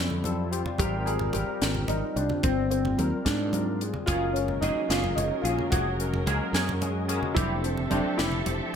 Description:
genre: electric jazz fusion.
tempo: 73 BPM (dotted quarters).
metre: 6/8.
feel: straight.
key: unclear.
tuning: A4 = 440 Hz.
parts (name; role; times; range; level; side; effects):
dark baby grand piano; melody; 0.0-8.8 s; C4 to Ab4; -30 LUFS; equal; analog chorus.
barky tine electric piano; accompaniment; 0.0-8.8 s; F3 to Db5; -33 LUFS; left 5 dB; ensemble chorus.
fretless electric bass; bass; 0.0-8.6 s; F1 to Ab2; -30 LUFS; right 1 dB; none.
congas; percussion; 0.1-8.6 s; none; -35 LUFS; right 3 dB; none.
crisp fusion drum kit; drums; 0.3-8.6 s; hi-hat, kick drum, snare drum; -30 LUFS; equal; gated reverb.
muted studio string section; sustained chords; 4.1-8.8 s; F3 to E5; -36 LUFS; right 3 dB; none.
clean electric guitar; stabs; 4.1-8.4 s; E3 to Ab4; -34 LUFS; right 2 dB; analog chorus.
room: moderate plate reverb, RT60 1.2 s, small room ambience.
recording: bright 1980s-style digital production.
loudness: -24 LUFS.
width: side -8 dB against mid.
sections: 0.0-8.8 A section.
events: none.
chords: 0.0 Fmaj9; 0.8 Abmaj9; 4.1 Gbmaj9; 7.4 Fmaj9.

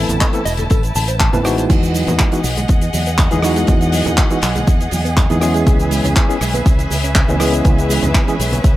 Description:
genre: nu-disco, nu disco.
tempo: 121 BPM.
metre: 4/4.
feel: straight.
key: E major.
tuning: A4 = 440 Hz.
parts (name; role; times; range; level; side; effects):
barky tine electric piano; accompaniment; 0.0-8.3 s; E3 to B4; -19 LUFS; equal; medium stereo tremolo, low-pass filter, dub echo.
muted chamber violin section; sustained chords; 0.0-8.8 s; C#4 to A5; -24 LUFS; equal; sidechain pumping.
direct-recorded clean electric guitar; riff; 0.0-1.6 s; A4 to A5; -25 LUFS; left 2 dB; wide subtle chorus, low-pass filter, dub echo.
fingered electric bass with an envelope filter; bass; 0.0-8.8 s; E1 to E2; -19 LUFS; equal; none.
damped 70s drum kit; drums; 0.1-8.7 s; crash cymbal, handclaps, hi-hat, rim click, shaker; -22 LUFS; equal; none.
congas and tambourine; percussion; 0.1-8.8 s; none; -27 LUFS; right 1 dB; none.
electronic kick drum; drums; 0.2-8.7 s; none; -14 LUFS; equal; none.
soft round pluck; arpeggios; 1.7-8.7 s; C#3 to C#4; -25 LUFS; right 3 dB; none.
room: studio reverb.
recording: none.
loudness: -13 LUFS.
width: side -15 dB against mid.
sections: 0.0-8.8 A section.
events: filter sweep on tine electric piano 0.0-8.8.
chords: 0.0 Amadd9; 1.7 Emaj9; 5.7 C#m7.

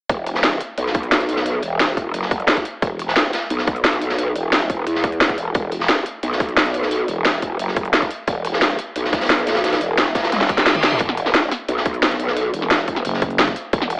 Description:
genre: dark technical drum and bass.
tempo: 176 BPM.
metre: 4/4.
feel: straight.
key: E minor.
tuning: A4 = 440 Hz.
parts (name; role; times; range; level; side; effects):
growl bass; bass; 0.1-14.0 s; E1 to E2; -21 LUFS; equal; chorus.
crunchy breakbeat drum kit; drums; 0.1-14.0 s; hi-hat, snare drum; -25 LUFS; equal; high-pass filter on hats, studio ambience, high-pass filter on snare, high-pass filter on room.
drum and bass drum kit; drums; 0.1-14.0 s; hi-hat, snare drum, toms; -18 LUFS; equal; studio ambience.
electronic kick drum; drums; 0.1-13.8 s; none; -21 LUFS; equal; overdrive, studio ambience.
reverse cymbal; sound effects; 10.5-11.0 s; none; -24 LUFS; equal; none.
growling FM bass; bass; 13.0-13.5 s; F#1; -23 LUFS; equal; none.
room: light reverb.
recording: AM radio sound.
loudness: -16 LUFS.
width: side -33 dB against mid.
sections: 0.1-14.0 A section.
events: drum fill 10.3-11.0; reverse cymbal 10.5-11.0.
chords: 0.1 E5.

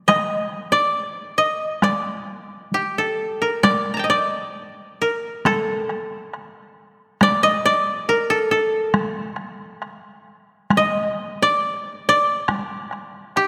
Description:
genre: japanese traditional, Japanese chamber music.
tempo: 68 BPM.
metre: 2/4.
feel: rubato.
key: D miyako bushi.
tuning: A4 = 440 Hz.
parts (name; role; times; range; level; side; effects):
koto; melody; 0.1-13.5 s; G4 to Bb5; -21 LUFS; equal; none.
taiko ensemble; percussion; 0.1-13.5 s; none; -26 LUFS; equal; none.
room: wet concert hall reverb, RT60 2.5 s.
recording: none.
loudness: -21 LUFS.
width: mono.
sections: 0.0-3.6 A section; 3.6-13.5 B section.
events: none.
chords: none.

